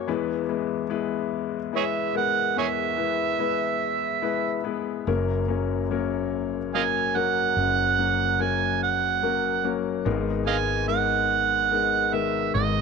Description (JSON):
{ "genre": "acoustic folk-pop ballad", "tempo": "48 BPM (dotted quarters)", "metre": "6/8", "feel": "straight", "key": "F# mixolydian", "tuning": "A4 = 440 Hz", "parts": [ { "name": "clear baby grand piano", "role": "accompaniment", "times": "0.0-12.8 s", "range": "F#1 to B4", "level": "-26 LUFS", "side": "left 10 dB", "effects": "none" }, { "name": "overdriven harmonica", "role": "melody", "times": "1.8-12.8 s", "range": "G#4 to G#5", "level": "-24 LUFS", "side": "right 11 dB", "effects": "none" }, { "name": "woody fretless electric bass", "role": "bass", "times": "5.1-12.8 s", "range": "F#1 to G#1", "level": "-31 LUFS", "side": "right 1 dB", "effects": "none" } ], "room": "moderate plate reverb, RT60 2.7 s", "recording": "1960s-style stereo with parts hard left and right", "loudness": "-22 LUFS", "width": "side -5 dB against mid", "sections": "0.0-12.8 A section", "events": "none", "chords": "0.1 E; 5.1 F#; 10.1 G#madd9", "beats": "| 0.08 1.32 | 2.57 3.82 | 5.07 6.33 | 7.57 8.82 | 10.06 11.30 | 12.54" }